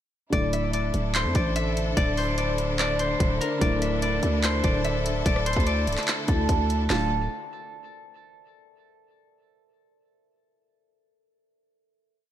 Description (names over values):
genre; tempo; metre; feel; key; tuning
hip hop, trap; 146 BPM; 4/4; half-time; unclear; A4 = 439 Hz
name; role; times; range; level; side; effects
concert harp; melody; 0.3-7.1 s; A4 to E5; -28 LUFS; equal; ping-pong delay
dark grand piano; accompaniment; 0.3-7.1 s; D3 to F4; -33 LUFS; left 1 dB; lush chorus
clear symphonic string section; sustained chords; 0.3-7.1 s; D3 to A4; -32 LUFS; left 1 dB; none
growling 808-style bass; bass; 0.3-7.3 s; C1 to F2; -27 LUFS; equal; none
trap drum kit; drums; 0.3-7.0 s; handclaps, hi-hat, kick drum, rim click, snare drum; -27 LUFS; equal; overdrive
room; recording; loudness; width
moderate plate reverb, RT60 2.0 s; dreamy mix soaked in reverb; -22 LUFS; side -11 dB against mid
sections
0.3-6.9 hook; 6.9-8.5 final chord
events
none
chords
0.3 Dsus2; 6.9 Dm